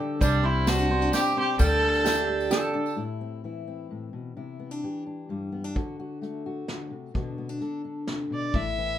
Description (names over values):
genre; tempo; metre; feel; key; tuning
acoustic folk duo or small band; 130 BPM; 3/4; straight; A dorian; A4 = 440 Hz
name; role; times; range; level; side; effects
fingerpicked steel-string acoustic guitar; accompaniment; 0.0-9.0 s; G2 to A4; -32 LUFS; left 3 dB; none
mandolin; arpeggios; 0.0-3.0 s; G3 to G5; -30 LUFS; right 4 dB; none
warm fiddle; melody; 0.2-2.5, 8.3-9.0 s; D4 to E5; -26 LUFS; equal; none
upright bass; bass; 0.2-2.5, 8.5-9.0 s; A1 to D2; -27 LUFS; equal; none
soft brush drum kit; drums; 0.2-2.6, 5.8-8.6 s; hi-hat, kick drum, snare drum; -28 LUFS; equal; none
tambourine; percussion; 0.2-2.9 s; none; -37 LUFS; left 6 dB; none
lap resonator guitar; second line; 2.0-2.9 s; G4 to A4; -28 LUFS; right 6 dB; none
room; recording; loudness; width
light reverb; minimal, uncompressed stereo recording; -24 LUFS; side -11 dB against mid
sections
0.0-3.0 A section; 3.0-8.5 B section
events
none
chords
0.2 Csus2; 1.6 Dsus4; 3.0 Amadd9; 4.4 Cadd9; 5.8 D; 7.1 Bm